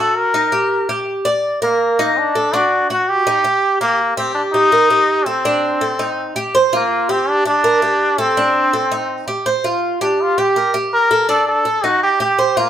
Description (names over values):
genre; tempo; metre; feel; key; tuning
latin; 164 BPM; 4/4; straight; unclear; A4 = 440 Hz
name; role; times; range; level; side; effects
trombone with straight mute; melody; 0.0-12.7 s; Bb3 to Bb4; -15 LUFS; equal; none
Cuban tres; arpeggios; 0.0-12.7 s; D4 to D5; -18 LUFS; right 1 dB; none
room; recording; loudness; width
wet studio reverb, RT60 0.8 s; heard from further back in the room; -14 LUFS; side -10 dB against mid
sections
0.0-4.0 A section; 4.0-12.7 B section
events
none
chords
0.3 Eb; 1.1 Gm; 1.8 Eb5; 2.5 D; 3.3 Eb; 4.0 N.C.; 4.7 Eb; 5.5 D5; 6.2 Cm; 6.9 Bb69; 7.6 Bbmaj13; 8.4 D5; 9.1 Cm; 9.8 Dmadd11; 10.6 Gmadd9; 11.3 D5; 12.0 Cm